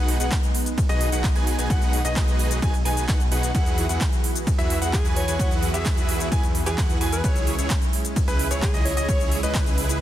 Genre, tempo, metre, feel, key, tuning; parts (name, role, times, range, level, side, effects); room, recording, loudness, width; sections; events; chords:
EDM, festival progressive house; 130 BPM; 4/4; straight; B major; A4 = 440 Hz
lush unison pad; sustained chords; 0.0-10.0 s; E3 to B4; -32 LUFS; right 1 dB; chorus, sidechain pumping
bright concert grand piano; arpeggios; 0.0-10.0 s; B4 to G#5; -32 LUFS; left 1 dB; sidechain pumping, digital delay
dense compressed supersaw; riff; 0.0-10.0 s; D#4 to G#5; -30 LUFS; right 1 dB; sidechain pumping, digital delay
wide detuned saw bass; bass; 0.0-10.0 s; B1 to E2; -27 LUFS; equal; chorus, sidechain pumping
big-room dance drum kit; drums; 0.1-10.0 s; handclaps, hi-hat, ride cymbal, shaker; -30 LUFS; equal; overdrive
electronic kick drum; drums; 0.3-9.6 s; -22 LUFS; equal; overdrive
breathy alto saxophone; melody; 4.9-9.6 s; G#4 to D#5; -32 LUFS; equal; vintage 12-bit sampler grit, digital delay
digital ambience; dense, heavily limited modern master; -20 LUFS; side -12 dB against mid
0.0-10.0 A section
0.0 B6; 3.5 Eadd9; 7.2 C#m